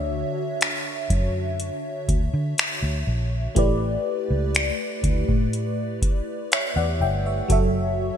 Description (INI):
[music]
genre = contemporary R&B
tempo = 61 BPM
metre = 4/4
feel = straight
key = D major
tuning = A4 = 440 Hz
[part]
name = FM electric piano with soft pad layer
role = accompaniment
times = 0.0-8.2 s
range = D3 to G5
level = -26 LUFS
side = left 1 dB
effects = chorus, phaser
[part]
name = vintage muted fingered electric bass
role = bass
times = 0.0-8.1 s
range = F#1 to D3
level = -25 LUFS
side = equal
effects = none
[part]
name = booming analog drum machine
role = drums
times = 0.6-7.7 s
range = finger snaps, hi-hat, kick drum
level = -23 LUFS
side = equal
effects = vintage 12-bit sampler grit, gated reverb
[sound]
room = light reverb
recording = bright 1980s-style digital production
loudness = -21 LUFS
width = side -9 dB against mid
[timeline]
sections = 0.0-8.2 A section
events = none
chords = 0.0 Dmaj9; 3.6 A9sus4; 7.5 F#m7